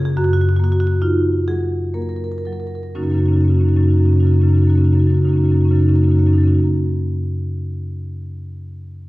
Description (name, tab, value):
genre	classical, contemporary piece for solo marimba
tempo	58-74 BPM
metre	3/4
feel	rubato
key	F# major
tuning	A4 = 440 Hz
part	marimba with medium hard mallets	solo	0.0-6.6 s	F#2 to A#4	-15 LUFS	equal	none
room	wet recital hall reverb, RT60 1.5 s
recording	heard from further back in the room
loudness	-14 LUFS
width	side -19 dB against mid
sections	0.0-2.9 A section; 2.9-5.9 B section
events	slowing down 0.0-2.9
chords	0.2 F#maj13; 2.9 F#6